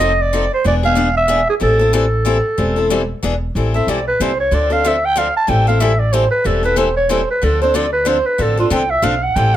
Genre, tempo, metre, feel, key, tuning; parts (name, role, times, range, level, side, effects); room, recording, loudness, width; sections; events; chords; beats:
acoustic string swing (jazz manouche); 186 BPM; 3/4; swing 58% on 8ths; A minor; A4 = 440 Hz
growling clarinet; melody; 0.0-9.6 s; F4 to A5; -16 LUFS; right 2 dB; plate reverb
picked steel-string acoustic guitar; accompaniment; 0.0-9.6 s; D3 to A4; -19 LUFS; left 4 dB
upright bass; bass; 0.0-9.6 s; E1 to D2; -19 LUFS; equal
light reverb; -13 LUFS; side -12 dB against mid
0.0-3.5 A section; 3.5-9.6 B section
clarinet solo 3.5-9.6
0.0 F7; 0.7 E7b9; 1.6 Am7; 3.2 E7; 3.5 Am7; 4.5 Dm7; 5.5 Am7; 7.4 Dm7
0.01 0.33 | 0.65 0.97 1.30 | 1.62 1.94 2.26 | 2.58 2.91 3.23 | 3.55 3.87 4.20 | 4.52 4.84 5.16 | 5.48 5.81 6.13 | 6.45 6.77 7.10 | 7.42 7.74 8.06 | 8.39 8.71 9.03 | 9.36